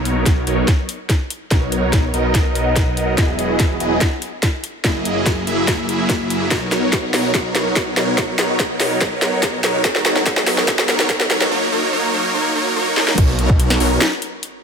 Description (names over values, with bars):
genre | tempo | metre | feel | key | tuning
future bass | 144 BPM | 4/4 | half-time | B major | A4 = 440 Hz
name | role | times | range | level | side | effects
supersaw chords | riff | 0.0-14.0 s | F#3 to E5 | -19 LUFS | right 1 dB | phaser, sidechain pumping, low-pass filter, ping-pong delay
wide detuned saw bass | bass | 0.0-14.0 s | E1 to B1 | -24 LUFS | equal | chorus, tube saturation, sidechain pumping
trap drum kit | drums | 0.1-14.5 s | crash cymbal, hi-hat, snare drum | -19 LUFS | equal | none
electronic kick drum | drums | 0.3-13.6 s | none | -18 LUFS | equal | none
room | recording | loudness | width
moderate lush hall reverb, RT60 2.0 s | high-pass filter | -15 LUFS | side -6 dB against mid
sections
0.0-13.2 A section; 13.2-14.6 B section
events
build-up 0.0-13.2; drum fill 0.0-11.5, 13.0; filter sweep on supersaw synth 0.0-13.2; filter sweep 0.0-13.2; drop 13.2-14.6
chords
0.0 Bmaj9; 3.2 Emaj9; 4.8 F#13; 6.5 Bmaj9; 9.8 Esus2; 11.5 F#6; 13.2 Bmaj9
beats
0.26 0.68 1.10 | 1.51 1.93 2.35 2.76 | 3.18 3.60 4.01 4.43 | 4.85 5.26 5.68 6.10 | 6.51 6.93 7.35 7.76 | 8.18 8.60 9.01 9.43 | 9.85 10.26 10.68 11.10 | 11.51 11.93 12.35 12.76 | 13.18 13.60 14.01 14.43